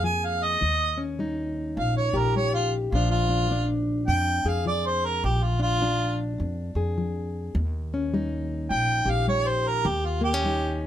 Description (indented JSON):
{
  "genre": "acoustic country blues, solo or duo",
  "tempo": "104 BPM",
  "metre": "4/4",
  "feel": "swing 62% on 8ths",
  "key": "unclear",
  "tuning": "A4 = 441 Hz",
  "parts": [
    { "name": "mellow harmonica", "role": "melody", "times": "0.0-10.8 s", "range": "F4 to Ab5", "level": "-25 LUFS", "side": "right 1 dB", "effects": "none" },
    { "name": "fingerpicked plugged-in old ladder-braced acoustic guitar", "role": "accompaniment", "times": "0.0-10.9 s", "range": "Bb2 to Ab4", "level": "-29 LUFS", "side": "left 2 dB", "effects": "none" },
    { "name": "upright bass", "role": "bass", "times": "0.0-10.9 s", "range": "Bb1 to F2", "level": "-27 LUFS", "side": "equal", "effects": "none" }
  ],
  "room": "light reverb",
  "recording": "none",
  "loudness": "-23 LUFS",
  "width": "side -11 dB against mid",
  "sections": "0.0-10.9 A section",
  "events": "harmonica solo 0.0-10.9",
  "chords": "0.0 Bb5; 0.6 Eb7; 2.9 Bb7; 7.6 Eb7"
}